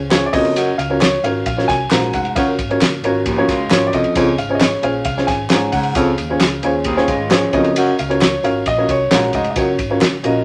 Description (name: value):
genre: uptempo 1960s-style soul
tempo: 133 BPM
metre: 4/4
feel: straight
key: unclear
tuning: A4 = 440 Hz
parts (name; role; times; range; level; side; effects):
- clear grand piano; melody; 0.0-10.4 s; Db5 to Ab5; -24 LUFS; equal; none
- vintage muted fingered electric bass; bass; 0.0-10.4 s; F1 to Db3; -29 LUFS; equal; none
- dark upright piano; accompaniment; 0.1-10.4 s; Db3 to Eb5; -21 LUFS; equal; none
- warm soul drum kit; drums; 0.1-10.3 s; hi-hat, kick drum, ride cymbal, snare drum; -22 LUFS; equal; none
- handclaps and tambourine; percussion; 0.1-10.3 s; none; -32 LUFS; equal; none
- warm baritone saxophone; riff; 0.3-9.7 s; Eb2 to Ab2; -22 LUFS; equal; none
- electric guitar through a small old amp; riff; 3.3-4.1, 6.9-7.7 s; F3 to Ab4; -27 LUFS; equal; spring reverb
room: moderate small room reverb, RT60 0.5 s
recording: none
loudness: -16 LUFS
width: mono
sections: 0.0-10.4 A section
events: none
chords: 0.3 Gbmaj7; 4.2 Dbmaj7; 7.5 Gbmaj7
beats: 0.11 | 0.56 1.01 1.46 1.91 | 2.36 2.81 3.26 3.71 | 4.16 4.61 5.06 5.51 | 5.96 6.41 6.86 7.31 | 7.76 8.21 8.66 9.11 | 9.56 10.01